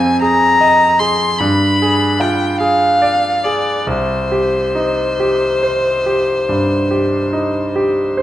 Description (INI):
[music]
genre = classical, romantic duo for violin and grand piano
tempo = 45-52 BPM (dotted quarters)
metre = 12/8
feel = rubato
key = C minor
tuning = A4 = 440 Hz
[part]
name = clear violin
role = melody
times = 0.0-8.2 s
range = C5 to C6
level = -15 LUFS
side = left 1 dB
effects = none
[part]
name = bright grand piano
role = accompaniment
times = 0.0-8.2 s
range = C2 to Eb5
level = -16 LUFS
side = right 1 dB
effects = none
[sound]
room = wet recital hall reverb, RT60 1.5 s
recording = dark, warm production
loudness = -12 LUFS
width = side -13 dB against mid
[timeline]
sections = 0.0-8.2 A section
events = none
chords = 0.0 Fm7; 1.4 G7b9; 3.9 Cm